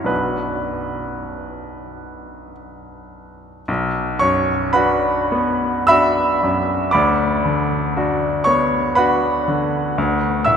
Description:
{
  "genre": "classical, romantic nocturne for solo piano",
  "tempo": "48-61 BPM",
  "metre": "3/4",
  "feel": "rubato",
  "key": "B minor",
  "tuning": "A4 = 440 Hz",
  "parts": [
    { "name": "clear baby grand piano", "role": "solo", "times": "0.0-10.6 s", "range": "B1 to E6", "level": "-16 LUFS", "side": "equal", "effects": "none" }
  ],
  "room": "wet cathedral reverb, RT60 6.7 s",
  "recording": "recorded in a church or concert hall",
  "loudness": "-16 LUFS",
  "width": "side -7 dB against mid",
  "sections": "0.0-3.7 A section; 3.7-10.6 B section",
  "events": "none",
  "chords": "0.1 Bm; 6.9 Bm/D; 10.0 D5"
}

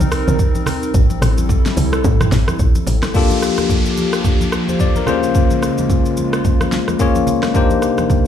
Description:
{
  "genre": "amapiano",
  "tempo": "109 BPM",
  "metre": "4/4",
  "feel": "swing 58% on 16ths",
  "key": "unclear",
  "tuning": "A4 = 439 Hz",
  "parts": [
    { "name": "hollow soft pad", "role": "sustained chords", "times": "0.0-8.3 s", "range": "C3 to Bb4", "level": "-22 LUFS", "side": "equal", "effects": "chorus, sidechain pumping" },
    { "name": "tight log drum bass", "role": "bass", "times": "0.0-3.0 s", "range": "A1 to A2", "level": "-16 LUFS", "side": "equal", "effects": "none" },
    { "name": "deep house drum kit", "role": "drums", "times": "0.0-8.2 s", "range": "hi-hat, kick drum, rim click, shaker, snare drum, toms", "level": "-17 LUFS", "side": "right 1 dB", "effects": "none" },
    { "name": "congas", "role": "percussion", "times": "0.0-8.2 s", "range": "none", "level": "-25 LUFS", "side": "right 3 dB", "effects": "none" },
    { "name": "bell-like tine electric piano", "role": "accompaniment", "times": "3.1-8.3 s", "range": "Bb3 to D5", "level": "-17 LUFS", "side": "left 6 dB", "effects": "none" },
    { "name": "downlifter", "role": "sound effects", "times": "3.1-7.5 s", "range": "none", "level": "-28 LUFS", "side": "equal", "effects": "none" }
  ],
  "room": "light reverb",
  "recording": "played on a big sound system in a bare room, large studio reverb",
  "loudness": "-13 LUFS",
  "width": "side -9 dB against mid",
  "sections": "0.0-3.1 A section; 3.1-8.3 B section",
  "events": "drop 0.0-3.1",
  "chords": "0.0 Cm7; 0.9 Am7; 3.1 Gm7; 5.1 Bbm7; 7.5 Cm7"
}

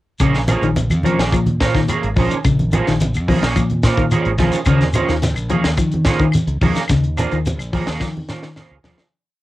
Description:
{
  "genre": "afrobeat",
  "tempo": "108 BPM",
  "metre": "4/4",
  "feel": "straight",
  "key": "Bb minor",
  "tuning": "A4 = 440 Hz",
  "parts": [
    { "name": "semi-hollow electric guitar", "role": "arpeggios", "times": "0.2-9.0 s", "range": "Db3 to F3", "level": "-20 LUFS", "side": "left 3 dB", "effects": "cassette tape, analog delay" },
    { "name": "electric guitar through a small old amp", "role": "stabs", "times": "0.2-9.0 s", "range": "F3 to Ab4", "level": "-21 LUFS", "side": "right 4 dB", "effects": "analog chorus, cassette tape" },
    { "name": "fingered electric bass", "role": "bass", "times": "0.2-9.0 s", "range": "Ab1 to Eb3", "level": "-21 LUFS", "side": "equal", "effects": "none" },
    { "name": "tight funk drum kit", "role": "drums", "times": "0.2-9.1 s", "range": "hi-hat, kick drum, snare drum", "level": "-22 LUFS", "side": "equal", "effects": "cassette tape" },
    { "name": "claves", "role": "percussion", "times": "0.2-8.7 s", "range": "none", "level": "-30 LUFS", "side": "left 5 dB", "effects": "none" },
    { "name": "shekere", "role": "percussion", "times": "0.2-9.1 s", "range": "none", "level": "-25 LUFS", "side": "left 1 dB", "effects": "none" },
    { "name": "congas", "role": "percussion", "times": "0.5-9.0 s", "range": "none", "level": "-22 LUFS", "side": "right 1 dB", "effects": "none" }
  ],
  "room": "light reverb",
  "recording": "home recording on cassette",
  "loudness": "-15 LUFS",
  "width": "side -16 dB against mid",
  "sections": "0.2-9.1 groove",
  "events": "fade-out 6.9-9.1; drum fill 8.0-9.1",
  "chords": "0.2 Bbm7; 4.7 Eb9sus4"
}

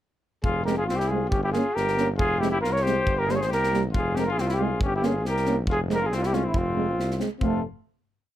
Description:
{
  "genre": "balkan folk, Balkan brass band",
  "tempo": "138 BPM",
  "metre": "2/4",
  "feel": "swing 53% on 16ths",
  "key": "F harmonic minor",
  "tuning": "A4 = 440 Hz",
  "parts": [
    { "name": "dark trumpet", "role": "melody", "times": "0.4-7.6 s", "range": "E4 to Db5", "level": "-26 LUFS", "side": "equal", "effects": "none" },
    { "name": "clear flugelhorn", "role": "second line", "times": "0.4-7.6 s", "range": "C4 to Bb4", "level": "-31 LUFS", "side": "left 5 dB", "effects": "none" },
    { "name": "clear tuba", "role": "bass", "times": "0.4-7.6 s", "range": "F1 to C2", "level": "-28 LUFS", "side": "equal", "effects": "none" },
    { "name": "tight funk drum kit", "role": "percussion", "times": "0.4-7.6 s", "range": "kick drum, snare drum", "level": "-31 LUFS", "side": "equal", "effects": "none" },
    { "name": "dark euphonium", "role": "accompaniment", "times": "0.7-7.6 s", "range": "G3 to Bb3", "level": "-29 LUFS", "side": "right 5 dB", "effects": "none" },
    { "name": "mellow trombone", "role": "accompaniment", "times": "0.7-7.6 s", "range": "Bb3 to Db4", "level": "-32 LUFS", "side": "left 6 dB", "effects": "none" }
  ],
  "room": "little or no reverb",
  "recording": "close, detailed microphones",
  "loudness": "-22 LUFS",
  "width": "side -12 dB against mid",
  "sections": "0.4-7.4 A section; 7.4-8.3 final chord",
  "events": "none",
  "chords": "0.4 Fm; 1.3 Gdim; 2.2 Fm; 3.1 Gmadd11; 3.9 Fm; 4.8 Gdim; 5.7 Fm; 7.4 F"
}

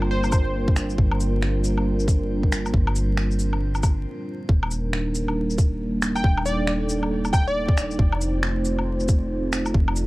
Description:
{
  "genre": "future garage",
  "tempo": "137 BPM",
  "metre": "4/4",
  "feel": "swing 61% on 16ths",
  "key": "unclear",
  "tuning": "A4 = 440 Hz",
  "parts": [
    { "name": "dark analog pad", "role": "sustained chords", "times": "0.0-10.1 s", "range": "G3 to D5", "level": "-26 LUFS", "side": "right 1 dB", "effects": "chorus, sidechain pumping" },
    { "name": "soft 808-style bass", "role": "bass", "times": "0.0-10.1 s", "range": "Eb1 to G1", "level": "-25 LUFS", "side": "equal", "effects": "none" },
    { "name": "electronic woodblock, shaker, cabasa and finger snaps", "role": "drums", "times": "0.0-10.1 s", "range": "none", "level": "-29 LUFS", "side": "left 1 dB", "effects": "none" },
    { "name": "drifting glass-harmonics texture", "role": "texture", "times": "0.0-4.1 s", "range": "C4 to C5", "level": "-41 LUFS", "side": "right 1 dB", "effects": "chorus, built-in reverb" },
    { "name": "plucky unison lead", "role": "melody", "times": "0.1-0.7, 6.2-7.8 s", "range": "C5 to G5", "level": "-30 LUFS", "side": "equal", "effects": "tape echo" },
    { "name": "electronic kick drum", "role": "drums", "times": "0.3-9.9 s", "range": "none", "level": "-19 LUFS", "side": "equal", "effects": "none" }
  ],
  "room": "little or no reverb",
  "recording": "dark, warm production, vinyl crackle",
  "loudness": "-20 LUFS",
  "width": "side -20 dB against mid",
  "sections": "0.0-4.5 A section; 4.5-10.1 B section",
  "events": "break 4.1-4.5",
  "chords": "0.0 Gm7; 4.5 Ebmaj7; 8.0 F7"
}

